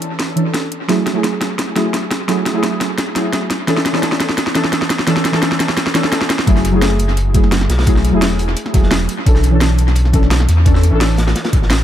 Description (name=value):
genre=liquid drum and bass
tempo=172 BPM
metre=4/4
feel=straight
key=F# minor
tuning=A4 = 440 Hz
part: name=deep mellow chord stab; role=accompaniment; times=0.0-11.8 s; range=E3 to A4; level=-18 LUFS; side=equal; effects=chorus, vintage 12-bit sampler grit, dub echo
part: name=drum and bass drum kit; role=drums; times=0.0-11.8 s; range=hi-hat, snare drum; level=-18 LUFS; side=equal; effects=overdrive, dub echo
part: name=sub bass with octave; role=bass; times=6.5-11.8 s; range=E1 to E2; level=-14 LUFS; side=equal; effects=none
part: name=crunchy breakbeat drum kit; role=drums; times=6.5-11.8 s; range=hi-hat, snare drum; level=-25 LUFS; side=equal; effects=high-pass filter on hats, high-pass filter on snare, high-pass filter on room, dub echo
part: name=electronic kick drum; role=drums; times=6.5-11.6 s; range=none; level=-13 LUFS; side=equal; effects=overdrive
room=moderate spring reverb, RT60 1.4 s, digital ambience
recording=echo-heavy mix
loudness=-12 LUFS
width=side -11 dB against mid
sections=0.0-6.5 A section; 6.5-11.8 B section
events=build-up 0.0-6.5; drum fill 0.0-6.5; drop 6.5-11.8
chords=0.0 Aadd11/E; 0.9 F#m9; 3.5 Aadd11/E; 6.5 F#m9; 9.1 Bm11